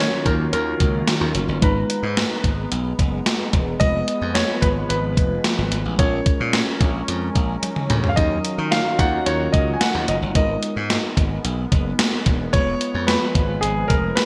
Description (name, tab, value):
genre	1980s-style pop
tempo	110 BPM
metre	4/4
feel	straight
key	Eb minor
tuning	A4 = 439 Hz
part	bright concert grand piano	melody	0.0-14.2 s	Ab4 to Ab5	-27 LUFS	equal	delay
part	FM electric piano with soft pad layer	accompaniment	0.0-14.3 s	Gb3 to Bb5	-31 LUFS	equal	chorus
part	phased analog pad	sustained chords	0.0-14.3 s	Eb3 to Bb4	-31 LUFS	equal	phaser, chorus
part	glassy slap bass	bass	0.0-14.1 s	Fb1 to Eb3	-26 LUFS	equal	none
part	gated 80s digital drum machine	drums	0.3-14.3 s	hi-hat, kick drum, snare drum, toms	-23 LUFS	equal	gated reverb, gated reverb snare
room	moderate lush hall reverb, RT60 2.1 s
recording	bright 1980s-style digital production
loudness	-20 LUFS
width	mono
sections	0.0-14.3 A section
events	drum fill 7.6-8.2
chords	0.0 Ebm7; 1.6 Abmadd9; 3.8 Fdim; 6.0 Bbm7; 8.2 Ebm7; 10.4 Abmadd9; 12.5 Fdim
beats	0.54 1.08 | 1.63 2.17 2.72 3.26 | 3.81 4.35 4.90 5.44 | 5.99 6.54 7.08 7.63 | 8.17 8.72 9.26 9.81 | 10.35 10.90 11.44 11.99 | 12.54 13.08 13.63 14.17